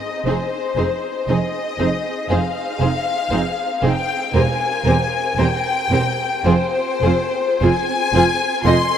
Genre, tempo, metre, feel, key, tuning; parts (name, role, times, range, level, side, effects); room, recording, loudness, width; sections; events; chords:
classical, slow romantic movement for string orchestra; 49-61 BPM; 4/4; rubato; A4 = 440 Hz
warm symphonic violin section; melody; 0.0-9.0 s; C5 to C6; -20 LUFS; left 4 dB
warm symphonic violin section; second line; 0.3-8.7 s; Ab4 to Eb5; -25 LUFS; left 1 dB
rich symphonic viola section; accompaniment; 0.3-8.7 s; C4 to G4; -25 LUFS; right 3 dB
rich symphonic cello section; bass; 0.3-8.7 s; E2 to F2; -21 LUFS; right 3 dB
warm symphonic double bass section; bass; 0.3-8.7 s; E1 to F1; -23 LUFS; right 3 dB
wet huge ambient reverb, RT60 8.2 s; in a vast, echoing space; -16 LUFS; side -9 dB against mid
0.0-9.0 A section
0.3 F7(no3); 4.4 C/E; 6.5 Fm